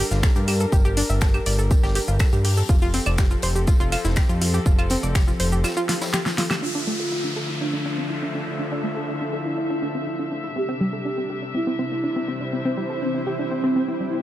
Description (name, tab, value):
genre	melodic techno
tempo	122 BPM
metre	4/4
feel	straight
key	D minor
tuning	A4 = 439 Hz
part	dark studio string section	sustained chords	0.0-14.2 s	C3 to E5	-30 LUFS	left 2 dB	sidechain pumping, low-pass filter
part	analog pluck	arpeggios	0.0-14.2 s	G3 to E5	-28 LUFS	equal	chorus, sidechain pumping, tape echo
part	fat analog bass	bass	0.0-5.6 s	F1 to G2	-22 LUFS	equal	tube saturation, sidechain pumping
part	deep house drum kit	drums	0.1-6.6 s	claves, finger snaps, hi-hat, shaker, snare drum	-27 LUFS	equal	small room ambience
part	deep reggae drum kit	drums	0.1-6.5 s	hi-hat, snare drum, tambourine	-36 LUFS	left 3 dB	sidechain pumping on hats, high-pass filter on hats, small room ambience, high-pass filter on snare, sidechain pumping on perc, high-pass filter on perc, high-pass filter on room
part	electronic kick drum	drums	0.2-5.3 s	none	-18 LUFS	equal	small room ambience
part	expressive synth lead	melody	6.6-14.2 s	C4 to G4	-28 LUFS	right 1 dB	analog chorus, sidechain pumping, tape echo
part	downlifter	sound effects	6.6-10.6 s	none	-32 LUFS	equal	none
part	granular cloud pad	texture	7.6-14.2 s	D4 to G5	-31 LUFS	equal	built-in reverb, sidechain pumping
room	light reverb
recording	none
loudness	-20 LUFS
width	side -13 dB against mid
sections	0.0-6.6 A section; 6.6-14.2 B section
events	break 5.6-6.6; drum fill 5.9-6.6; band accent 6.5; filter sweep on synth pluck 6.6-14.2; filter sweep on analog synth lead 6.6-14.2; filter sweep on string section 6.6-14.2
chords	0.0 Gm; 2.7 F; 6.6 Dm; 10.6 C